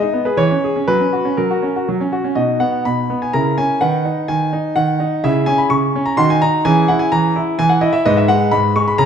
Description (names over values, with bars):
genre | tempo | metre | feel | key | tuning
classical-period piano sonatina | 126 BPM | 3/4 | rubato | B major | A4 = 440 Hz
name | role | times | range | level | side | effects
clear concert grand piano | solo | 0.0-9.1 s | G#2 to C#6 | -14 LUFS | equal | none
room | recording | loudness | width
moderate recital hall reverb, RT60 1.4 s | dark, warm production | -14 LUFS | side -8 dB against mid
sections
0.0-2.4 A section; 2.4-9.1 B section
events
none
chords
0.4 C#m/E; 0.9 F#; 2.4 B; 3.3 A#dim/C#; 3.8 B/D#; 5.2 C#m; 6.2 D#madd11; 6.7 C#m/E; 8.1 G#m